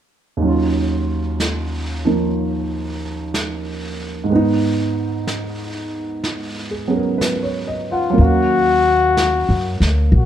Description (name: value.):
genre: jazz ballad.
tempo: 62 BPM.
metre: 4/4.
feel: swing 68% on 8ths.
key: Eb minor.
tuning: A4 = 439 Hz.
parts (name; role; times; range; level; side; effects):
warm concert grand piano; accompaniment; 0.4-10.3 s; Eb2 to Gb5; -20 LUFS; right 2 dB; none.
vintage brush drum kit; drums; 0.4-10.3 s; brushed snare drum, hi-hat, snare drum; -27 LUFS; right 1 dB; none.
mellow flugelhorn; melody; 7.9-10.3 s; F4 to Gb4; -16 LUFS; left 4 dB; none.
upright bass; bass; 8.2-10.3 s; Bb1 to Gb2; -16 LUFS; equal; none.
room: moderate large studio reverb, RT60 0.9 s.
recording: none.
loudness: -17 LUFS.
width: side -10 dB against mid.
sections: 0.4-8.2 A section; 8.2-10.3 B section.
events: none.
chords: 0.4 Ebm9; 4.3 Abm7; 8.2 Ebm7.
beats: | 0.43 1.40 2.38 3.35 | 4.31 5.27 6.24 7.21 | 8.19 9.16 10.14.